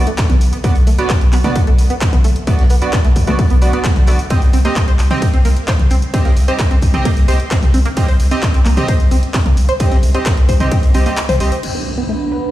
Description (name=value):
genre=driving peak-time techno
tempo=131 BPM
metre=4/4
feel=straight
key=unclear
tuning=A4 = 440 Hz
part: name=sync-sweep polysynth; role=stabs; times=0.0-11.5 s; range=B3 to Eb5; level=-22 LUFS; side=right 2 dB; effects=chorus, sidechain pumping, digital delay
part: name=saturated sub bass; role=bass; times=0.0-11.5 s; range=B1 to C2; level=-16 LUFS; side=equal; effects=tube saturation, sidechain pumping, low-pass filter
part: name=tight sequenced synth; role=riff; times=0.1-12.4 s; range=A3 to C5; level=-22 LUFS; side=equal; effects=chorus, phaser, tube saturation, sidechain pumping, digital delay
part: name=punchy analog drum machine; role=drums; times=0.1-11.7 s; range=crash cymbal, handclaps, hi-hat, ride cymbal, toms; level=-24 LUFS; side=left 1 dB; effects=overdrive
part: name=electronic kick drum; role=drums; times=0.2-10.8 s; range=none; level=-14 LUFS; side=equal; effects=none
part: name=raw garage drum kit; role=drums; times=0.2-12.5 s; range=hi-hat, snare drum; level=-33 LUFS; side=right 1 dB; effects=sidechain pumping on hats, high-pass filter on hats, low-pass filter on hats, high-pass filter on snare, low-pass filter on snare, high-pass filter on room, low-pass filter on room
part: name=impact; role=sound effects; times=11.6-12.5 s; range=none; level=-24 LUFS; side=equal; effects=none
part: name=warbly tape-like pad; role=texture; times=11.6-12.5 s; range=D4 to B5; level=-21 LUFS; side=right 4 dB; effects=chorus, built-in reverb, sidechain pumping
room=digital ambience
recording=played on a big sound system in a bare room, stone room reverb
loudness=-11 LUFS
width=side -15 dB against mid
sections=0.0-11.6 A section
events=drop 0.0-11.6; break 11.2-11.6; impact 11.6-12.5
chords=0.0 Bm; 4.3 Cm; 11.6 Bm